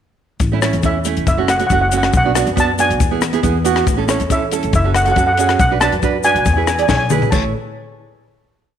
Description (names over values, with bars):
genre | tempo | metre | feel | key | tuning
calypso | 139 BPM | 4/4 | straight | A major | A4 = 439 Hz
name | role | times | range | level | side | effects
upright bass | bass | 0.4-7.5 s | F#1 to F#2 | -20 LUFS | left 1 dB | none
compact cocktail drum kit | drums | 0.4-7.4 s | crash cymbal, hi-hat, kick drum, rim click, snare drum, toms | -19 LUFS | left 4 dB | none
tube shaker | percussion | 0.4-7.5 s | none | -30 LUFS | left 15 dB | none
nylon-string guitar | accompaniment | 0.5-7.5 s | A3 to D5 | -19 LUFS | right 8 dB | none
steel pan | melody | 0.6-7.5 s | C#5 to A5 | -17 LUFS | equal | none
room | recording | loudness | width
moderate echo chamber reverb, RT60 1.5 s, small room ambience | 1960s-style stereo with parts hard left and right | -13 LUFS | side -9 dB against mid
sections
0.4-7.3 verse; 7.3-8.8 final chord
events
drum fill 6.9-7.3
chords
0.4 A; 1.3 F#m; 2.1 Bm; 3.0 E; 3.9 A; 4.7 F#m; 5.6 Bm; 6.5 E; 7.3 A